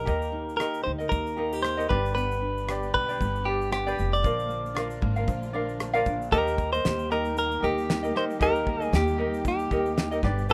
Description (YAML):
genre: acoustic pop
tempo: 115 BPM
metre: 4/4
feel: swing 55% on 16ths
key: Eb major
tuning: A4 = 441 Hz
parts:
  - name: direct-recorded clean electric guitar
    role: melody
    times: 0.0-10.5 s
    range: G4 to D5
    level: -30 LUFS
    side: equal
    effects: none
  - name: ukulele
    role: accompaniment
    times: 0.0-10.5 s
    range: D4 to F5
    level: -33 LUFS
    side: equal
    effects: none
  - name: fingerpicked steel-string acoustic guitar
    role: arpeggios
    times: 0.0-10.5 s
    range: F3 to G4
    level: -37 LUFS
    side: equal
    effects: none
  - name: upright bass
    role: bass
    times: 0.0-10.5 s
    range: F1 to Eb2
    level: -33 LUFS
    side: equal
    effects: none
  - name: cloth-damped thuddy drum kit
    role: drums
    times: 0.1-10.5 s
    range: kick drum, rim click, shaker, snare drum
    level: -32 LUFS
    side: equal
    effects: none
  - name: warm studio string section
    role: sustained chords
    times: 2.2-10.5 s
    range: B2 to G4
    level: -43 LUFS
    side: equal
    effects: none
room: little or no reverb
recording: none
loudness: -27 LUFS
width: mono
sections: 0.0-6.3 A section; 6.3-10.5 B section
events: none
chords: 0.0 Eb; 1.9 G; 4.2 Bb; 6.3 Eb